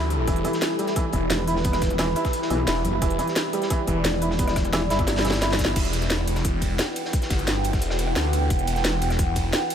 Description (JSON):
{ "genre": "dark technical drum and bass", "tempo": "175 BPM", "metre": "4/4", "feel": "straight", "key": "E minor", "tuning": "A4 = 440 Hz", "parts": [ { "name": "deep dark ambient pad", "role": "sustained chords", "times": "0.0-9.7 s", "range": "E4 to G5", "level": "-28 LUFS", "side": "equal", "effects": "chorus, built-in reverb, sidechain pumping" }, { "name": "phased detuned saw bass", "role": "bass", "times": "0.0-9.5 s", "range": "E1 to D2", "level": "-25 LUFS", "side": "equal", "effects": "phaser, overdrive, sidechain pumping" }, { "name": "crunchy breakbeat drum kit", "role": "drums", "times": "0.0-9.7 s", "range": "hi-hat, snare drum", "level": "-34 LUFS", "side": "equal", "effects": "high-pass filter on hats, studio reverb, high-pass filter on snare, high-pass filter on room" }, { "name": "drum and bass drum kit", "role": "drums", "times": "0.1-9.7 s", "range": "crash cymbal, hi-hat, ride cymbal, rim click, snare drum", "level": "-28 LUFS", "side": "equal", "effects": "studio reverb" }, { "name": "felt-muted upright piano", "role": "arpeggios", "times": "0.3-5.5 s", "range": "E3 to E4", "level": "-29 LUFS", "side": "right 2 dB", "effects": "sidechain pumping, analog delay" }, { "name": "electronic kick drum", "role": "drums", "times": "0.3-9.4 s", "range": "none", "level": "-25 LUFS", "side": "equal", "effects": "studio reverb" }, { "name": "metallic wobble bass", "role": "bass", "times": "1.3-5.7 s", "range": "E1 to B1", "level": "-25 LUFS", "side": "equal", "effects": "chorus, tube saturation" } ], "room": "moderate huge ambient reverb, RT60 8.7 s", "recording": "dreamy mix soaked in reverb", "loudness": "-21 LUFS", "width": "side -8 dB against mid", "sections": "0.0-5.8 A section; 5.8-9.7 A section", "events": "drop 0.0-5.8, 5.8-9.7; drum fill 5.1-5.8", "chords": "0.0 Em", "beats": "| 0.28 0.62 0.96 1.30 | 1.65 1.99 2.33 2.68 | 3.02 3.36 3.70 4.05 | 4.39 4.73 5.08 5.42 | 5.76 6.10 6.45 6.79 | 7.13 7.48 7.82 8.16 | 8.50 8.85 9.19 9.53" }